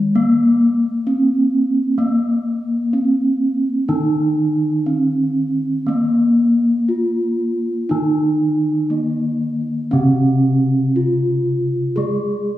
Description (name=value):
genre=gamelan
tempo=59-67 BPM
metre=4/4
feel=straight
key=Bb slendro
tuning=A4 = 440 Hz
part: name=gamelan-type bronze metallophone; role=melody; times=0.0-12.6 s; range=Ab3-25c to Ab4-25c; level=-17 LUFS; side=equal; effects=none
part: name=gamelan-type bronze metallophone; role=accompaniment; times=0.0-12.6 s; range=Db3-45c to Bb3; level=-20 LUFS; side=left 1 dB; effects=none
room=wet recital hall reverb, RT60 1.7 s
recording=recorded in a church or concert hall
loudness=-15 LUFS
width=side -14 dB against mid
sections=0.0-5.9 A section; 5.9-12.6 B section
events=none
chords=none